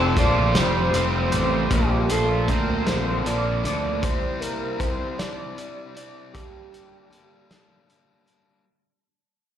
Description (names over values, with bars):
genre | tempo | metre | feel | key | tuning
indie rock | 52 BPM (dotted quarters) | 6/8 | straight | G dorian | A4 = 436 Hz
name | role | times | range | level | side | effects
fat analog lead | melody | 0.0-7.8 s | G4 to D5 | -27 LUFS | right 1 dB | chorus, slapback echo, tape echo
overdriven electric guitar | riff | 0.0-8.7 s | F2 to E4 | -29 LUFS | left 8 dB | slapback echo
overdriven electric guitar | riff | 0.0-4.0 s | Bb2 to A4 | -26 LUFS | right 6 dB | wide subtle chorus, slapback echo
modern bright fingered electric bass | bass | 0.0-4.0 s | F1 to D2 | -24 LUFS | equal | none
loose indie drum kit | drums | 0.2-8.5 s | hi-hat, kick drum, snare drum | -26 LUFS | equal | none
room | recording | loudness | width
small room ambience | live gig heard through the venue's PA, recital hall reverb | -20 LUFS | side -10 dB against mid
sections
0.0-8.7 A section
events
fade-out 0.0-8.7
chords
0.0 Fadd9; 1.7 Bbadd9; 4.0 C; 6.3 Gm